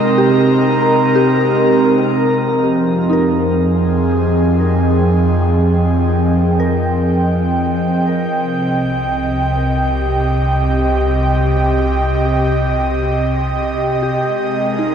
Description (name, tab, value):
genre	ambient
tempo	free time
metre	none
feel	none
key	unclear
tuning	A4 = 440 Hz
part	airy breathy pad	sustained chords	0.0-14.9 s	C3 to G5	-14 LUFS	right 1 dB	chorus
part	soft synth bell	arpeggios	0.0-14.9 s	Eb4 to Bb5	-22 LUFS	left 1 dB	chorus, phaser, diffuse ambient delay
part	bowed-like drone	drone	0.0-2.5 s	Ab3	-26 LUFS	right 5 dB	built-in reverb
part	drifting glass-harmonics texture	texture	0.0-2.4 s	Eb4 to Eb5	-23 LUFS	right 2 dB	chorus, built-in reverb
part	warm sub bass	bass	2.4-14.9 s	Ab1 to F2	-19 LUFS	equal	none
room	wet concert hall reverb, RT60 2.1 s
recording	cassette tape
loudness	-13 LUFS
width	side -8 dB against mid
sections	0.0-2.4 A section; 2.4-14.9 B section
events	none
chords	0.0 Cm7; 2.4 Fm7; 8.3 Cm; 14.2 Abadd9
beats	free time